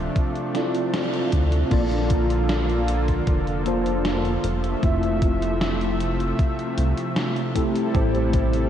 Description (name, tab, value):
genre	vaporwave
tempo	77 BPM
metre	4/4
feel	straight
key	unclear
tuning	A4 = 440 Hz
part	mellow tine electric piano	accompaniment	0.0-8.7 s	A3 to F5	-24 LUFS	equal	medium stereo tremolo, ensemble chorus, vintage 12-bit sampler grit, tape echo
part	lush unison pad	sustained chords	0.0-8.7 s	C3 to E5	-28 LUFS	equal	chorus
part	chorused synth bass	bass	0.0-8.7 s	F1 to D2	-24 LUFS	equal	none
part	electronic kick drum	drums	0.2-8.5 s	none	-23 LUFS	equal	none
part	gated 80s digital drum machine	drums	0.2-8.7 s	crash cymbal, hi-hat, snare drum	-32 LUFS	equal	gated reverb, gated reverb snare
room	moderate huge ambient reverb, RT60 6.4 s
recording	dreamy mix soaked in reverb, cassette tape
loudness	-20 LUFS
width	side -10 dB against mid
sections	0.0-1.7 A section; 1.7-8.7 B section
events	band accent 0.9-1.3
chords	0.0 Dm9; 1.7 Bbmaj7; 4.4 Fmaj7; 7.6 Am7